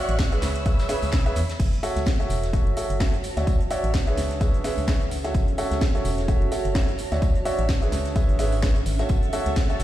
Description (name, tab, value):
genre	piano house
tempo	128 BPM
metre	4/4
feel	swing 57% on 16ths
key	F# minor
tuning	A4 = 440 Hz
part	muted studio violin section	sustained chords	0.0-1.6, 9.1-9.8 s	C#5 to A6	-35 LUFS	left 1 dB	sidechain pumping
part	warm upright piano	riff	0.0-9.8 s	F#4 to E5	-28 LUFS	right 1 dB	sidechain pumping, ping-pong delay
part	organ-like FM bass	bass	0.1-9.8 s	E1 to E2	-26 LUFS	equal	sidechain pumping
part	house drum kit	drums	0.1-9.8 s	cabasa, crash cymbal, hi-hat, ride cymbal, snare drum	-33 LUFS	right 1 dB	none
part	electronic kick drum	drums	0.2-9.7 s	none	-23 LUFS	equal	none
part	jazz brush drum kit	drums	0.2-9.8 s	hi-hat, snare drum, tambourine	-41 LUFS	equal	high-pass filter on hats, high-pass filter on snare, high-pass filter on perc, high-pass filter on room
part	granular cloud pad	texture	2.3-9.8 s	C#4 to A5	-33 LUFS	right 2 dB	built-in reverb, sidechain pumping
room	small room ambience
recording	played on a big sound system in a bare room, stone room reverb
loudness	-21 LUFS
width	side -13 dB against mid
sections	0.0-1.6 A section; 1.6-9.8 B section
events	drop 0.0-1.6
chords	0.4 C#m7; 1.6 F#m7; 3.2 Dmaj9; 4.2 C#m7; 5.3 F#m7; 7.0 Dmaj9; 7.9 C#m7; 9.1 F#m7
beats	0.19 0.66 1.13 | 1.60 2.06 2.53 3.00 | 3.47 3.94 4.41 4.88 | 5.35 5.81 6.28 6.75 | 7.22 7.69 8.16 8.63 | 9.10 9.56